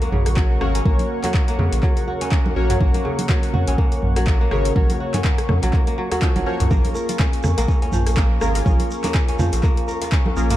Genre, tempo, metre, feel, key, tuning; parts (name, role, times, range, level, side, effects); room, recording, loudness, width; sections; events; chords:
afro house; 123 BPM; 4/4; swing 57% on 16ths; A4 = 438 Hz
dark analog pad; sustained chords; 0.0-10.6 s; Bb4 to Db6; -31 LUFS; equal; chorus, sidechain pumping
kora; arpeggios; 0.0-10.6 s; Db3 to Bb4; -26 LUFS; equal; sidechain pumping, dub echo
warm analog keys; stabs; 0.0-10.6 s; Bb3 to Db5; -28 LUFS; left 1 dB; chorus, phaser, sidechain pumping, dub echo
afro-pop drum kit; drums; 0.0-10.6 s; handclaps, hi-hat, rim click, toms; -27 LUFS; equal
djembe; percussion; 0.0-10.6 s; -33 LUFS; left 3 dB
warm sub bass; bass; 0.1-10.6 s; Ab1 to F2; -20 LUFS; equal; tube saturation, sidechain pumping
congas; percussion; 0.1-10.3 s; -27 LUFS; right 2 dB
electronic kick drum; drums; 0.4-10.2 s; -19 LUFS; equal
shekere; percussion; 6.7-10.6 s; -39 LUFS; right 3 dB
studio ambience; dark, warm production; -17 LUFS; side -14 dB against mid
0.0-10.6 A section
0.0 Gb; 6.7 Bbm7